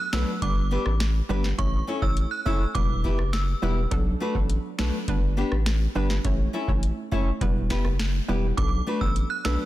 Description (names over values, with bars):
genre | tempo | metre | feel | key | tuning
dancehall | 103 BPM | 4/4 | straight | B minor | A4 = 435 Hz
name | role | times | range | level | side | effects
synth chime | melody | 0.0-3.7, 8.6-9.6 s | C#6 to F#6 | -31 LUFS | right 3 dB | ensemble chorus, ping-pong delay
hollow square pluck | accompaniment | 0.0-9.7 s | F#3 to C#5 | -32 LUFS | right 4 dB | chorus
nylon-string guitar | arpeggios | 0.1-9.6 s | A3 to C#5 | -31 LUFS | left 2 dB | none
saturated sub bass | bass | 0.1-9.6 s | E1 to B1 | -26 LUFS | equal | none
booming analog drum machine | drums | 0.1-9.6 s | finger snaps, hi-hat, kick drum, rim click, snare drum | -27 LUFS | equal | vintage 12-bit sampler grit
room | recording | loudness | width
digital ambience | dense, heavily limited modern master | -22 LUFS | side -15 dB against mid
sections
0.0-9.7 A section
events
none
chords
0.4 G; 1.6 A; 2.8 Em; 3.9 Bm7; 5.1 G; 6.2 A; 7.4 Em; 8.6 Bm7